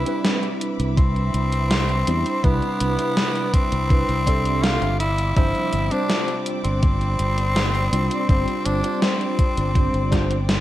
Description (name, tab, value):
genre	vaporwave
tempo	82 BPM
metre	4/4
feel	straight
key	C major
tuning	A4 = 439 Hz
part	raspy tenor saxophone	melody	0.0-10.6 s	B3 to F4	-25 LUFS	left 1 dB	tape echo
part	tine electric piano	accompaniment	0.0-10.3 s	C3 to E5	-26 LUFS	right 1 dB	medium tremolo, analog chorus
part	rich studio string section	sustained chords	0.0-10.6 s	C3 to D6	-36 LUFS	left 1 dB	vintage 12-bit sampler grit
part	fingered electric bass	bass	0.0-10.6 s	G1 to E2	-23 LUFS	equal	none
part	gated 80s digital drum machine	drums	0.1-10.6 s	hi-hat, snare drum	-24 LUFS	equal	gated reverb, gated reverb snare, overdrive
part	electronic kick drum	drums	1.0-10.3 s	none	-20 LUFS	equal	overdrive
room	light reverb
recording	none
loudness	-18 LUFS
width	side -14 dB against mid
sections	0.0-10.6 A section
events	none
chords	0.0 Cmaj9; 5.0 G7sus4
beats	0.24 0.98 1.71 | 2.44 3.17 3.90 4.63 | 5.37 6.10 6.83 7.56 | 8.29 9.03 9.76 10.49